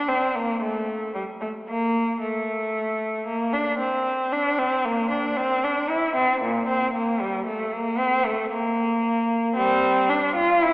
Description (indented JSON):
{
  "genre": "classical, baroque-style suite movement for unaccompanied cello",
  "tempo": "57 BPM",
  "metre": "3/4",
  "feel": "rubato",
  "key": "unclear",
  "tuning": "A4 = 435 Hz",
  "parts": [
    { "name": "warm cello", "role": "solo", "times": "0.0-10.7 s", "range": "Bb2 to F4", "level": "-21 LUFS", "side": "equal", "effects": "none" }
  ],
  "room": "wet church reverb, RT60 2.6 s",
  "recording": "heard from further back in the room, telephone sound",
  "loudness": "-21 LUFS",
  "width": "side -22 dB against mid",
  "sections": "0.0-10.7 A section",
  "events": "none",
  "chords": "none"
}